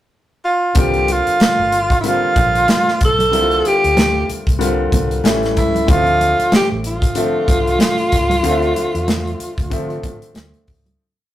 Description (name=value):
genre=lush 1970s-style soul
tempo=94 BPM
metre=4/4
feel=swing 58% on 16ths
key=D minor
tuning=A4 = 444 Hz
part: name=breathy tenor saxophone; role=melody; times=0.4-10.3 s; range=E4 to A4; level=-16 LUFS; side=equal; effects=none
part: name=clear grand piano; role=accompaniment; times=0.7-11.0 s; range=D3 to E5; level=-21 LUFS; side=left 2 dB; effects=none
part: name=modern studio drum kit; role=drums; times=0.7-11.0 s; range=hi-hat, kick drum, snare drum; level=-18 LUFS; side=equal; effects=none
part: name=vintage muted fingered electric bass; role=bass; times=0.8-11.0 s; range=G1 to D3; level=-23 LUFS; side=equal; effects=none
part: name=congas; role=percussion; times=0.8-11.0 s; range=none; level=-25 LUFS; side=right 2 dB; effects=none
room=moderate studio reverb, RT60 0.6 s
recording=rough rehearsal-room recording, tube saturation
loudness=-13 LUFS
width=side -13 dB against mid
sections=0.0-0.8 pickup bar; 0.8-11.0 A section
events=fade-out 8.4-11.0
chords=0.0 N.C.; 0.8 C7sus4; 5.2 A7; 5.9 Dm7